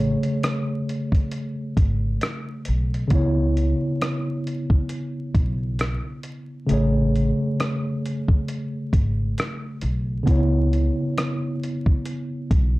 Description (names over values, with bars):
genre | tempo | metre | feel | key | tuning
lo-fi hip hop | 67 BPM | 4/4 | swing 58% on 16ths | C# minor | A4 = 440 Hz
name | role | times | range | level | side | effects
tine electric piano | accompaniment | 0.0-12.8 s | C#3 to C#5 | -25 LUFS | equal | overdrive, fast stereo tremolo
upright bass | bass | 0.0-12.8 s | G#1 to C#2 | -23 LUFS | equal | none
dusty soul sampler-style drum kit | drums | 0.2-12.8 s | hi-hat, kick drum, rim click | -22 LUFS | equal | none
room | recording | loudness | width
light reverb | dark, warm production, vinyl crackle | -21 LUFS | side -20 dB against mid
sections
0.0-12.8 A section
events
none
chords
0.0 Amaj7; 3.1 C#m7; 6.7 Amaj7; 10.3 C#m7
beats
0.42 1.32 2.21 | 3.11 4.00 4.90 5.79 | 6.69 7.58 8.48 9.38 | 10.27 11.17 12.06